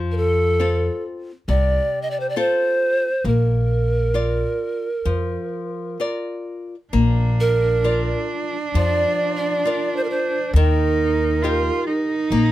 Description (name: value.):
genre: fado-style ballad.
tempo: 67 BPM.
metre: 4/4.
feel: rubato.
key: Bb major.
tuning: A4 = 440 Hz.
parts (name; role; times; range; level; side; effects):
nylon-string guitar; accompaniment; 0.0-12.5 s; C3 to D5; -26 LUFS; left 4 dB; none.
upright bass; bass; 0.0-12.5 s; Bb1 to F2; -20 LUFS; equal; none.
breathy polished pan flute; melody; 0.1-12.3 s; A4 to Eb5; -21 LUFS; right 2 dB; none.
dark cello; second line; 6.9-12.5 s; D4 to F4; -24 LUFS; right 4 dB; none.
room: light reverb.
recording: close, detailed microphones.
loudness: -18 LUFS.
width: side -14 dB against mid.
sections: 0.0-6.9 A section; 6.9-12.5 A section.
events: none.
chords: 0.0 F; 3.2 Bb; 10.5 Eb.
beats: 0.60 1.48 2.36 | 3.25 4.14 5.06 6.00 | 6.93 7.84 8.75 9.65 | 10.54 11.43 12.31.